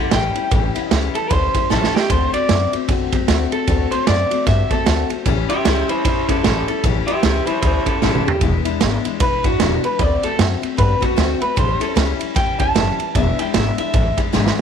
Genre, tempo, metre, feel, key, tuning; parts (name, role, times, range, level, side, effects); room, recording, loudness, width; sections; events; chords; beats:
rockabilly; 152 BPM; 4/4; swing 60% on 8ths; A mixolydian; A4 = 439 Hz
electric guitar through a small old amp; melody; 0.0-14.2 s; C#4 to A5; -21 LUFS; equal; tape echo
picked steel-string acoustic guitar; accompaniment; 0.0-14.6 s; E2 to F#4; -23 LUFS; left 15 dB
upright bass; bass; 0.0-14.6 s; E1 to G2; -21 LUFS; left 1 dB
raw garage drum kit; drums; 0.1-14.6 s; kick drum, ride cymbal, snare drum, toms; -20 LUFS; right 4 dB
light reverb, small room ambience; 1960s-style stereo; -15 LUFS; side -7 dB against mid
0.0-14.6 A section
clean electric guitar solo 0.0-14.6; drum fill 1.7-2.1, 8.0-8.4, 14.3
0.0 A7; 2.1 D7; 5.3 A7; 8.4 E7; 10.0 D7; 11.6 A7; 13.1 E7
0.12 | 0.51 0.91 1.30 1.70 | 2.10 2.49 2.89 3.28 | 3.68 4.07 4.47 4.86 | 5.26 5.65 6.05 6.44 | 6.84 7.23 7.63 8.02 | 8.41 8.81 9.20 9.60 | 9.99 10.39 10.78 11.18 | 11.57 11.96 12.36 12.75 | 13.15 13.54 13.94 14.33